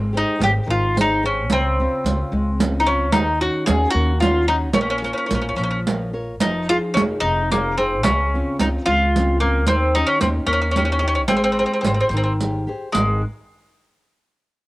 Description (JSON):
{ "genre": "italian folk, Italian serenade", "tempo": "73 BPM (dotted quarters)", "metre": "6/8", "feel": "rubato", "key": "Ab major", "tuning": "A4 = 441 Hz", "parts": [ { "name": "nylon-string guitar", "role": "accompaniment", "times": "0.0-13.2 s", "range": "Ab2 to Db5", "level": "-25 LUFS", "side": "left 1 dB", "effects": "cassette tape" }, { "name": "upright bass", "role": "bass", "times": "0.0-13.2 s", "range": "F1 to Eb2", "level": "-23 LUFS", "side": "equal", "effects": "none" }, { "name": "bowl-back mandolin", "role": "melody", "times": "0.2-13.2 s", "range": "Ab3 to Ab4", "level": "-20 LUFS", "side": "equal", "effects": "cassette tape" }, { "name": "riq", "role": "percussion", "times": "0.4-13.2 s", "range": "none", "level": "-22 LUFS", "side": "right 3 dB", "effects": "none" } ], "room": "light reverb, small room ambience", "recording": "home recording on cassette", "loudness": "-17 LUFS", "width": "side -19 dB against mid", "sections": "0.0-12.9 A section; 12.9-14.6 B section", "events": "none", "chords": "0.0 Abmaj7; 1.5 Dbmaj7; 3.1 Ebm7; 4.7 Bbm; 6.4 Fm7; 8.0 Dbmaj7; 9.7 Eb7; 11.3 Abmaj7; 12.9 Ab5" }